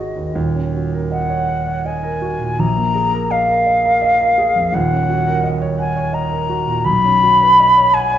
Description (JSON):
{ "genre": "classical, impressionist duo for flute and grand piano", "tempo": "83 BPM", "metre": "3/4", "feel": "uneven beats, rubato", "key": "unclear", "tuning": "A4 = 441 Hz", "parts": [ { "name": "mellow hollow silver concert flute", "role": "melody", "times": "0.0-8.2 s", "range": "D#5 to B5", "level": "-14 LUFS", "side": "left 1 dB", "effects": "none" }, { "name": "dark grand piano", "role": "accompaniment", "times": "0.0-8.2 s", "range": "D#1 to F#5", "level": "-19 LUFS", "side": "right 2 dB", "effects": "none" } ], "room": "moderate recital hall reverb, RT60 1.4 s", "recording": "nothing above 7.5 kHz", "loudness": "-14 LUFS", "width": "side -10 dB against mid", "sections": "0.0-8.2 A section", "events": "none", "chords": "0.4 D#m7; 2.6 A#7sus4; 4.7 D#m7; 6.9 Badd9", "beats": "| 0.36 1.11 1.85 | 2.59 3.31 4.04 | 4.75 5.45 6.14 | 6.87 7.59" }